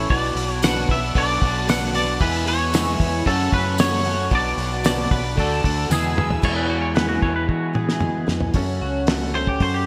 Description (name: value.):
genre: folk rock and heartland rock.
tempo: 114 BPM.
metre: 4/4.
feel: straight.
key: unclear.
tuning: A4 = 440 Hz.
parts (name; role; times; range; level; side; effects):
twangy electric guitar; melody; 0.0-9.9 s; G4 to F#5; -27 LUFS; equal; lush chorus, delay.
picked twelve-string acoustic guitar; accompaniment; 0.0-9.9 s; E2 to G#4; -32 LUFS; equal; analog chorus.
bright studio string section; sustained chords; 0.0-6.4 s; A4 to E6; -38 LUFS; equal; none.
electric guitar through a small old amp; riff; 0.0-9.9 s; E2 to G#4; -29 LUFS; equal; analog chorus.
deep dub fingered electric bass; bass; 0.0-9.9 s; B1 to E3; -28 LUFS; equal; none.
clear upright piano; accompaniment; 0.1-9.8 s; B3 to D5; -36 LUFS; equal; none.
cloth-damped thuddy drum kit; drums; 0.1-9.7 s; crash cymbal, hi-hat, kick drum, snare drum, toms; -25 LUFS; equal; gated reverb.
tambourine; percussion; 0.6-6.0 s; none; -37 LUFS; equal; none.
pedal steel guitar; second line; 6.4-8.3 s; F#4 to C#5; -31 LUFS; equal; delay.
room: light reverb, small room reverb.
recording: bright 1980s-style digital production.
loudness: -21 LUFS.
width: mono.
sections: 0.0-6.4 A section; 6.4-8.6 B section; 8.6-9.9 C section.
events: drum fill 5.9-6.4, 7.5-8.6; clean electric guitar solo 8.6-9.9.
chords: 0.1 Bm; 2.2 E; 3.3 F#m; 4.3 Bm; 5.4 D; 5.9 E; 8.6 F#m.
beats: | 0.10 0.63 1.16 1.68 | 2.21 2.74 3.27 3.79 | 4.32 4.85 5.38 5.91 | 6.43 6.96 7.49 8.02 | 8.55 9.08 9.61.